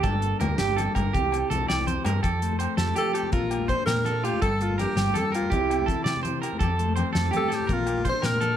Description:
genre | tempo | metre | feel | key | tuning
highlife guitar band | 110 BPM (dotted quarters) | 12/8 | straight | F major | A4 = 440 Hz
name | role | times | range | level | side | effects
mellow electric guitar | accompaniment | 0.0-8.6 s | F2 to A4 | -32 LUFS | left 5 dB | none
electric guitar at the edge of break-up | arpeggios | 0.0-8.6 s | F4 to D5 | -28 LUFS | right 5 dB | spring reverb, tape echo
hollow-body short-scale fingered electric bass | bass | 0.0-8.6 s | G1 to C3 | -28 LUFS | equal | none
damped 70s drum kit | drums | 0.0-8.5 s | hi-hat, kick drum, snare drum | -30 LUFS | left 1 dB | none
agogo bells | percussion | 0.0-8.4 s | none | -38 LUFS | left 4 dB | none
congas | percussion | 0.0-8.6 s | none | -33 LUFS | left 2 dB | none
breathy alto saxophone | melody | 3.0-8.6 s | E4 to C5 | -28 LUFS | left 2 dB | plate reverb
room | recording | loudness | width
light reverb | none | -22 LUFS | side -10 dB against mid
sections
0.0-2.2 A section; 2.2-8.6 B section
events
none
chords
0.0 Gmadd9; 1.1 C; 2.2 Fadd9; 3.3 Bb; 4.4 Gmadd9; 5.5 C; 6.6 Fadd9; 7.7 Bb

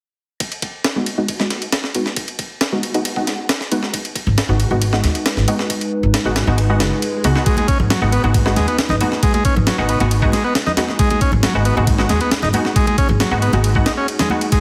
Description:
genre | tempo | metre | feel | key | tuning
breakbeat, breaks | 136 BPM | 4/4 | straight | G# dorian | A4 = 440 Hz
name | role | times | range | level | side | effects
breakbeat sampler-style drum kit | drums | 0.4-14.6 s | kick drum, ride cymbal, snare drum | -22 LUFS | equal | high-pass filter on cymbals, high-pass filter on kick, high-pass filter on snare
orchestra-hit-like synth stab | stabs | 1.0-14.4 s | G#3 to F#4 | -24 LUFS | equal | built-in reverb, cassette tape, tape echo
warbly tape-like pad | sustained chords | 4.7-14.6 s | G#3 to B4 | -28 LUFS | equal | chorus, built-in reverb, sidechain pumping
upright bass | bass | 4.3-13.8 s | F#1 to D#2 | -20 LUFS | equal | none
swell | sound effects | 6.9-7.5 s | none | -32 LUFS | equal | none
combo organ | riff | 7.5-14.6 s | F#3 to D#4 | -23 LUFS | equal | tape echo
congas and bongos | percussion | 7.6-14.6 s | none | -28 LUFS | equal | none
room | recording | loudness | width
light reverb | heavily compressed radio sound | -17 LUFS | mono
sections
0.4-7.5 A section; 7.5-14.6 B section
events
filter sweep on synth stab 0.4-7.5; swell 6.9-7.5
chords
0.4 G#m7

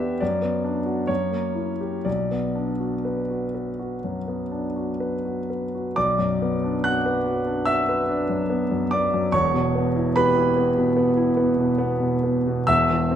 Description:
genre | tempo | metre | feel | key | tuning
classical, romantic character piece for solo piano | 60-75 BPM | 4/4 | rubato | B minor | A4 = 440 Hz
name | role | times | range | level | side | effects
clear grand piano | solo | 0.0-13.2 s | E1 to F#6 | -20 LUFS | equal | none
room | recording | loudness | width
moderate recital hall reverb, RT60 1.5 s | minimal, uncompressed stereo recording | -21 LUFS | side -9 dB against mid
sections
0.0-6.0 A section; 6.0-13.2 A section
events
none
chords
0.2 Bm/F#; 1.1 F#7b9; 2.1 Bm; 9.3 Em

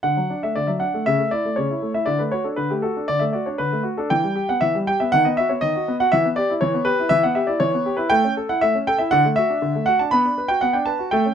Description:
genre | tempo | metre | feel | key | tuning
classical-period piano sonatina | 119 BPM | 4/4 | straight | D major | A4 = 440 Hz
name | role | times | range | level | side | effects
warm concert grand piano | solo | 0.0-11.3 s | C#3 to B5 | -18 LUFS | equal | none
room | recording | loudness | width
little or no reverb | none | -18 LUFS | side -8 dB against mid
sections
0.0-11.3 A section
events
none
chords
0.0 D; 1.1 A/C#; 2.1 D; 4.1 Em; 5.1 B/D#; 6.1 Em; 8.1 A; 9.1 D; 10.1 Bm

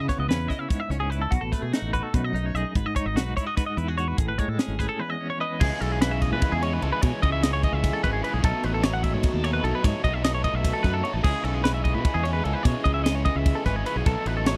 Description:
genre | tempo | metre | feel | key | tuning
math rock and midwest emo | 298 BPM (eighths) | 7/8 | straight | unclear | A4 = 440 Hz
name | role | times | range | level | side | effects
clean electric guitar | accompaniment | 0.0-5.6 s | E2 to B4 | -34 LUFS | equal | tremolo
twelve-string electric guitar | arpeggios | 0.0-14.6 s | F#4 to F#5 | -31 LUFS | equal | none
modern bright fingered electric bass | bass | 0.0-14.6 s | G#1 to B2 | -29 LUFS | equal | none
crisp fusion drum kit | drums | 0.1-14.6 s | crash cymbal, hi-hat, kick drum, ride cymbal, snare drum | -26 LUFS | equal | none
cranked stack guitar | riff | 5.6-14.6 s | B2 to D#4 | -32 LUFS | equal | overdrive
room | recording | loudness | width
little or no reverb | dry, close 1970s-style studio recording | -25 LUFS | mono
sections
0.0-5.6 A section; 5.6-14.6 B section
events
none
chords
0.0 C#m7; 1.3 B7; 2.8 G#m7; 4.2 C#m9; 8.4 B9; 11.2 C#m9; 14.1 B9

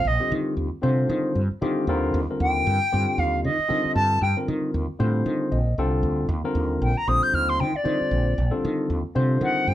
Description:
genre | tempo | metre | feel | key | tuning
electric jazz fusion | 115 BPM | 4/4 | swing 56% on 16ths | C dorian | A4 = 439 Hz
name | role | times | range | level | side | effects
bright reedy silver concert flute | melody | 0.0-9.7 s | D5 to G6 | -23 LUFS | equal | none
mellow fretless electric bass | bass | 0.0-9.7 s | Bb1 to Eb3 | -24 LUFS | equal | none
barky tine electric piano | accompaniment | 0.2-9.7 s | D3 to G5 | -26 LUFS | left 2 dB | none
room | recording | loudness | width
wet studio ambience, RT60 0.5 s | band playing live in one room | -21 LUFS | side -13 dB against mid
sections
0.0-9.7 A section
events
flute solo 0.0-9.7; tine electric piano fill 5.3-6.3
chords
0.0 Eb6; 1.9 Cm7/Eb

